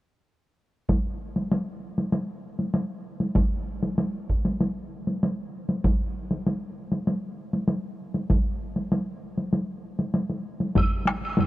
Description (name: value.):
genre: japanese traditional, taiko drum ensemble.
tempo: 97 BPM.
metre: 4/4.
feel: straight.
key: none.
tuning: none.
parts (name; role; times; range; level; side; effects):
solo taiko drums; percussion; 0.9-11.5 s; none; -26 LUFS; equal; none.
solo taiko drums; percussion; 0.9-10.9 s; none; -26 LUFS; right 1 dB; none.
taiko ensemble; percussion; 10.8-11.5 s; none; -26 LUFS; left 1 dB; none.
woodblock; percussion; 10.8-11.5 s; none; -32 LUFS; right 2 dB; none.
room: light reverb.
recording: worn, warbling old tape, cassette tape, warbly pitch drift.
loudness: -25 LUFS.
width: side -16 dB against mid.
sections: 0.9-10.8 A section.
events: none.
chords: none.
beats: | 0.90 1.51 2.13 2.75 | 3.37 3.99 4.61 5.22 | 5.84 6.46 7.08 7.69 | 8.31 8.93 9.54 10.16 | 10.77 11.39.